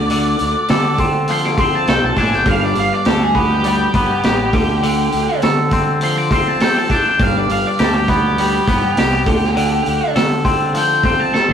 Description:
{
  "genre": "psychedelic rock",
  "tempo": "102 BPM",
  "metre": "4/4",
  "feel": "straight",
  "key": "D dorian",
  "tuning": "A4 = 439 Hz",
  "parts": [
    { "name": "octave-fuzz lead guitar", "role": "melody", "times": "0.0-11.5 s", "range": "G4 to D6", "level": "-19 LUFS", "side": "equal", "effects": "distortion" },
    { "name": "twangy electric guitar", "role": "riff", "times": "0.0-11.5 s", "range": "G2 to A4", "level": "-18 LUFS", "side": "left 1 dB", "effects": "phaser" },
    { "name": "fuzz fingered electric bass", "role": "bass", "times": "0.0-11.5 s", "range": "G1 to D3", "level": "-21 LUFS", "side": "equal", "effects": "overdrive" },
    { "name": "vintage drum kit", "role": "drums", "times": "0.1-11.5 s", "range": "hi-hat, kick drum, snare drum, toms", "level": "-19 LUFS", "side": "equal", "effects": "none" }
  ],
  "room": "moderate stone room reverb, RT60 1.1 s",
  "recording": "rough rehearsal-room recording, warm saturation",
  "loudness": "-13 LUFS",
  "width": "side -8 dB against mid",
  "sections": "0.0-11.5 A section",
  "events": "lead electric guitar solo 0.0-11.5; drum fill 11.3",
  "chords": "0.0 Dm7; 2.5 G; 4.5 Dm7; 7.2 G; 9.3 Dm7"
}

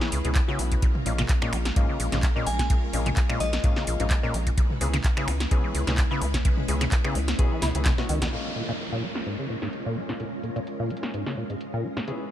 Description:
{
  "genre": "acid house",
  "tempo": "128 BPM",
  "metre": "4/4",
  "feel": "swing 54% on 16ths",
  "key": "Bb minor pentatonic",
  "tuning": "A4 = 438 Hz",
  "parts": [
    { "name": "string machine, full ensemble", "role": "sustained chords", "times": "0.0-12.3 s", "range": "Ab3 to Cb5", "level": "-34 LUFS", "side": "equal", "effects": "ensemble chorus, sidechain pumping" },
    { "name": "deep acid bass", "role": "riff", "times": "0.0-12.1 s", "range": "Ab2 to Fb4", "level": "-32 LUFS", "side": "equal", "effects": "tube saturation, analog chorus, sidechain pumping, digital delay" },
    { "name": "clear baby grand piano", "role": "stabs", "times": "0.0-12.3 s", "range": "Ab3 to Cb5", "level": "-34 LUFS", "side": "left 4 dB", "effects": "vintage 12-bit sampler grit, low-pass filter, digital delay" },
    { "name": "electro analog drum machine", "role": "drums", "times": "0.0-12.2 s", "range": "finger snaps, handclaps, hi-hat, snare drum, toms", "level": "-31 LUFS", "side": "equal", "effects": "low-pass filter on hats, small room ambience, low-pass filter on cymbals, low-pass filter on toms, low-pass filter on snare" },
    { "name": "round analog bass", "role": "bass", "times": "0.1-8.3 s", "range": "Bb1 to Db2", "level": "-27 LUFS", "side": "equal", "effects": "sidechain pumping" },
    { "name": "electronic kick drum", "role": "drums", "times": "0.4-8.3 s", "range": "none", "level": "-24 LUFS", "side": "equal", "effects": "small room ambience" },
    { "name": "glassy synth bell", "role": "melody", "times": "2.5-3.8 s", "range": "Eb5 to Ab5", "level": "-33 LUFS", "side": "left 2 dB", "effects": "chorus, ping-pong delay" },
    { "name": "downlifter", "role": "sound effects", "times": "8.3-12.1 s", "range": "none", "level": "-38 LUFS", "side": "equal", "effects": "none" }
  ],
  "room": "digital ambience",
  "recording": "none",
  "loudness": "-23 LUFS",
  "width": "side -12 dB against mid",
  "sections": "0.0-8.3 A section; 8.3-12.3 B section",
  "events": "drop 0.0-8.3; drum fill 7.6-8.3; band accent 8.2; filter sweep on string machine 8.3-12.3; filter sweep on grand piano 8.3-12.3",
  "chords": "0.0 Dbm7; 0.8 Bbm7; 4.6 Dbm7; 8.3 Bbm7"
}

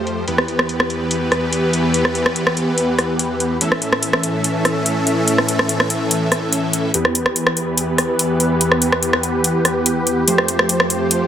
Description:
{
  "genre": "heavy wobble dubstep",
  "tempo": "144 BPM",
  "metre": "4/4",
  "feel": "half-time",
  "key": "E phrygian",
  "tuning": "A4 = 440 Hz",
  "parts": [
    { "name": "supersaw chords", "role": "sustained chords", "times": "0.0-11.3 s", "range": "E2 to E5", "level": "-18 LUFS", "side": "equal", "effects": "low-pass filter" },
    { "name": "dubstep drum kit", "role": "drums", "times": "0.1-11.2 s", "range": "hi-hat, rim click", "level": "-17 LUFS", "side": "equal", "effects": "high-pass filter on hats, low-pass filter on hats, high-pass filter on cymbals, low-pass filter on cymbals, soft clipping on snare, high-pass filter on snare, low-pass filter on snare" }
  ],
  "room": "moderate plate reverb, RT60 1.5 s",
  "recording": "dense, heavily limited modern master",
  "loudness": "-15 LUFS",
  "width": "side -10 dB against mid",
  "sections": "0.0-6.9 A section; 6.9-11.3 B section",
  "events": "filter sweep on drum 0.0-6.9; build-up 6.9-11.3",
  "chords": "0.3 Em; 3.6 A; 6.9 Em; 10.3 Fadd9"
}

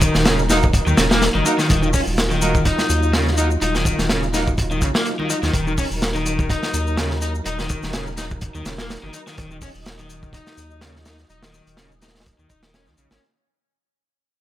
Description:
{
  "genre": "breakbeat, breaks",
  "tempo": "125 BPM",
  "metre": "4/4",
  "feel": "swing 55% on 16ths",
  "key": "Eb minor",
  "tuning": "A4 = 440 Hz",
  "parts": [
    { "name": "percussive tonewheel organ", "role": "sustained chords", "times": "0.0-13.2 s", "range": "Gb3 to Eb5", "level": "-29 LUFS", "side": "equal", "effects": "chorus vibrato, fast rotary speaker, sidechain pumping" },
    { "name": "crunchy overdriven guitar", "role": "riff", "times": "0.0-13.2 s", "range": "Db3 to Eb4", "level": "-23 LUFS", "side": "left 1 dB", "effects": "low-pass filter, dub echo" },
    { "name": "saturated sub bass", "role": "bass", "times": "0.0-13.2 s", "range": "Eb1 to Eb2", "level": "-24 LUFS", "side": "equal", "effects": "tube saturation" },
    { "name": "crunchy breakbeat drum kit", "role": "drums", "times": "0.0-13.2 s", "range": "hi-hat, kick drum, snare drum", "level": "-21 LUFS", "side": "equal", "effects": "none" },
    { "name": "shaker", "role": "drums", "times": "0.0-13.2 s", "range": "none", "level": "-31 LUFS", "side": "left 5 dB", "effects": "none" },
    { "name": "congas", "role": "percussion", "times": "0.2-5.3 s", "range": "none", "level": "-33 LUFS", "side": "right 1 dB", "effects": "none" },
    { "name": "warm horn section", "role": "stabs", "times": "0.5-4.5 s", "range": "Bb3 to Bb4", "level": "-27 LUFS", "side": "right 2 dB", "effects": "dub echo" }
  ],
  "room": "small room ambience",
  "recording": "none",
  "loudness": "-17 LUFS",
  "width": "side -13 dB against mid",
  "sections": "0.0-13.2 A section",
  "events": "fade-out 0.0-13.2",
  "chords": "0.0 Ebm"
}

